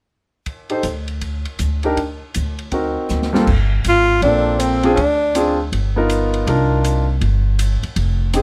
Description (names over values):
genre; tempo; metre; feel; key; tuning
jazz, small-group swing and bop; 160 BPM; 4/4; swing 64% on 8ths; G minor; A4 = 440 Hz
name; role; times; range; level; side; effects
open jazz drum kit; drums; 0.5-8.4 s; crash cymbal, hi-hat, kick drum, ride cymbal, snare drum; -29 LUFS; equal; none
clear concert grand piano; accompaniment; 0.7-8.4 s; G2 to C5; -21 LUFS; equal; none
upright bass; bass; 0.8-8.4 s; F1 to D2; -22 LUFS; equal; none
breathy tenor saxophone; melody; 3.9-5.5 s; C4 to F4; -18 LUFS; equal; none
room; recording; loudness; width
light reverb; none; -18 LUFS; mono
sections
0.5-3.5 A section; 3.5-8.4 B section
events
drum fill 3.1-3.5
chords
0.5 Am7b5; 1.2 Eb; 2.0 N.C.; 2.7 D7b9b13; 3.5 Gm11; 5.0 Dm7b5; 5.7 G7alt; 6.5 Cm11